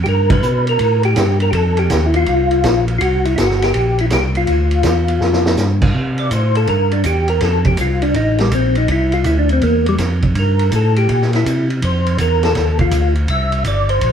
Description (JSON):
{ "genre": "soul jazz organ trio", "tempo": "163 BPM", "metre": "4/4", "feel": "swing 66% on 8ths", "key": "C mixolydian", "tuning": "A4 = 440 Hz", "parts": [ { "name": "percussive tonewheel organ", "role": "melody", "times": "0.0-14.1 s", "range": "G3 to E5", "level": "-17 LUFS", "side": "left 1 dB", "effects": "slow rotary speaker, chorus vibrato, plate reverb" }, { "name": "tonewheel organ", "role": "bass", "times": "0.0-14.1 s", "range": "G1 to C3", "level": "-16 LUFS", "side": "equal", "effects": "overdrive, slow rotary speaker" }, { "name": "vintage drum kit", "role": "drums", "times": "0.1-14.1 s", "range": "crash cymbal, hi-hat, kick drum, ride cymbal, snare drum", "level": "-21 LUFS", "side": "right 2 dB", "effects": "none" } ], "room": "moderate studio reverb, RT60 0.9 s", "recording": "heard from further back in the room", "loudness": "-13 LUFS", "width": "side -8 dB against mid", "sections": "0.0-5.9 A section; 5.9-14.1 B section", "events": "band accent 0.2; drum fill 5.2-5.6; tonewheel organ solo 5.9-14.1", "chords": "0.1 G; 1.5 F5; 3.0 C5; 4.5 G5; 5.9 C; 7.4 F; 8.9 C7; 11.8 F7; 13.3 C7", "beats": "| 0.06 0.43 0.80 1.17 | 1.53 1.90 2.27 2.64 | 3.01 3.37 3.74 4.11 | 4.48 4.84 5.21 5.58 | 5.95 6.32 6.68 7.05 | 7.42 7.79 8.15 8.52 | 8.89 9.25 9.62 9.99 | 10.36 10.72 11.09 11.45 | 11.82 12.19 12.55 12.92 | 13.28 13.65 14.02" }